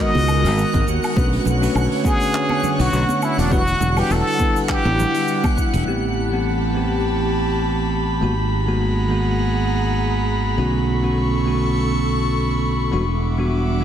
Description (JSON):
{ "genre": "sunset chillout", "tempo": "102 BPM", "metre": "4/4", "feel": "swing 55% on 16ths", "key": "unclear", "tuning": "A4 = 439 Hz", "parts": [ { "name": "trumpet with plunger mute", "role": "melody", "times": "0.0-5.5 s", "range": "D4 to D#5", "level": "-23 LUFS", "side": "left 1 dB", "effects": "digital delay" }, { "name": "bell-like tine electric piano", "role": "accompaniment", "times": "0.0-13.8 s", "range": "D3 to F#5", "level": "-23 LUFS", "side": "right 1 dB", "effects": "auto-pan, vintage 12-bit sampler grit, digital delay" }, { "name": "airy breathy pad", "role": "sustained chords", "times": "0.0-13.8 s", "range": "D3 to D6", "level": "-24 LUFS", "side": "equal", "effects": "chorus" }, { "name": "twinkling granular texture", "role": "texture", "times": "0.0-5.9 s", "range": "F#5", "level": "-32 LUFS", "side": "right 1 dB", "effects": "built-in reverb" }, { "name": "fingered electric bass", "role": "bass", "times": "0.1-13.8 s", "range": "E1 to D#2", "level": "-21 LUFS", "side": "equal", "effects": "none" }, { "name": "congas", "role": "percussion", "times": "0.1-5.5 s", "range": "none", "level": "-30 LUFS", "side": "right 3 dB", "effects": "none" }, { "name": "vintage brush drum kit", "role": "drums", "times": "0.3-5.8 s", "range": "cabasa, handclaps, hi-hat, woodblock", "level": "-31 LUFS", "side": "right 1 dB", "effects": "low-pass filter on hats, low-pass filter on perc, soft clipping on snare, low-pass filter on snare, low-pass filter on room" }, { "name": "electronic kick drum", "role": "drums", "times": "0.7-5.7 s", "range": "none", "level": "-21 LUFS", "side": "equal", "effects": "none" } ], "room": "moderate lush hall reverb, RT60 2.4 s", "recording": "dense, heavily limited modern master", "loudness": "-17 LUFS", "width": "side -10 dB against mid", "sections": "0.0-5.9 A section; 5.9-13.8 B section", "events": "none", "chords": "0.0 G#m9; 1.2 Bm9; 3.5 Em9; 5.9 Am9; 8.2 G#m9; 10.6 Bm9; 12.9 Em9", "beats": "0.57 | 1.16 1.75 2.34 2.93 | 3.52 4.10 4.69 5.28 | 5.87 6.46 7.05 7.63 | 8.22 8.81 9.40 9.99 | 10.57 11.16 11.75 12.34 | 12.93 13.52" }